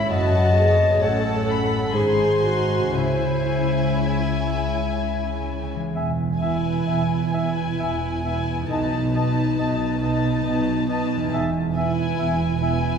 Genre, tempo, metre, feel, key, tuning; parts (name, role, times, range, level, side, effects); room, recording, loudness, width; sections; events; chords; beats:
classical, slow romantic movement for symphony orchestra; 58-71 BPM; 3/4; rubato; C# minor, E major from 5.9 s; A4 = 441 Hz
warm chamber violin section; melody; 0.0-13.0 s; G#5 to B#5; -31 LUFS; left 5 dB
warm chamber violin section; second line; 0.0-13.0 s; B3 to G#5; -33 LUFS; left 3 dB
warm clarinet; second line; 0.0-12.8 s; B3 to E5; -27 LUFS; equal
dark chamber viola section; accompaniment; 0.0-13.0 s; D#4 to A4; -27 LUFS; right 1 dB
concert harp; arpeggios; 0.0-13.0 s; E2 to F#5; -27 LUFS; left 1 dB
dark chamber cello section; bass; 0.0-12.9 s; E2 to C#3; -27 LUFS; right 1 dB
warm chamber double bass section; bass; 0.0-12.9 s; E1 to C#2; -27 LUFS; right 2 dB
mellow cor anglais; second line; 6.0-12.8 s; D#5 to E5; -31 LUFS; equal
mellow hollow flute section; second line; 6.0-12.7 s; G#5 to A5; -32 LUFS; left 3 dB
wet concert hall reverb, RT60 1.8 s; heard from further back in the room; -19 LUFS; side -6 dB against mid
0.0-5.9 A section; 5.9-13.0 B section
0.1 F#m; 1.9 G#7b9; 2.9 C#m; 5.9 E; 8.7 B7; 11.3 E
| 0.11 1.01 1.94 | 2.93 3.95 4.97 | 5.94 6.87 7.79 | 8.70 9.59 10.46 | 11.33 12.19